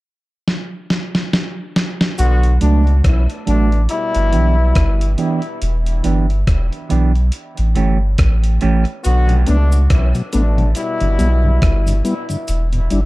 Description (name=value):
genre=dub reggae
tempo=70 BPM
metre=4/4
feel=swing 57% on 16ths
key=B minor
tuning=A4 = 438 Hz
part: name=dusty soul sampler-style drum kit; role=drums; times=0.5-13.1 s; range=hi-hat, kick drum, rim click, snare drum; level=-19 LUFS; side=equal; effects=none
part: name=bright trombone section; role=second line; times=2.2-12.0 s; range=B2 to F#4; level=-22 LUFS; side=left 3 dB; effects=dub echo
part: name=warm sub bass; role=bass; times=2.2-13.1 s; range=E1 to C#2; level=-14 LUFS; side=equal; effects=none
part: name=cabasa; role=percussion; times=2.2-2.4, 9.0-13.1 s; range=none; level=-35 LUFS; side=equal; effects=none
part: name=clean electric guitar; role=accompaniment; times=2.6-8.8 s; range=E3 to G4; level=-22 LUFS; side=right 5 dB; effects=low-pass filter, dub echo
part: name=mellow tonewheel organ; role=accompaniment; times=9.3-13.0 s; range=E2 to E4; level=-21 LUFS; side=left 2 dB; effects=chorus vibrato, low-pass filter
room=digital ambience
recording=dark, warm production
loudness=-14 LUFS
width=side -19 dB against mid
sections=0.0-2.2 A section; 2.2-13.1 B section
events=drum fill 0.5-2.2; part muted 2.2-9.0; filter sweep 2.2-13.1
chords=0.0 N.C.; 2.2 Bm7; 3.9 G6; 5.6 Em7; 7.3 A7; 9.0 Bm7; 10.8 G6; 12.5 Em7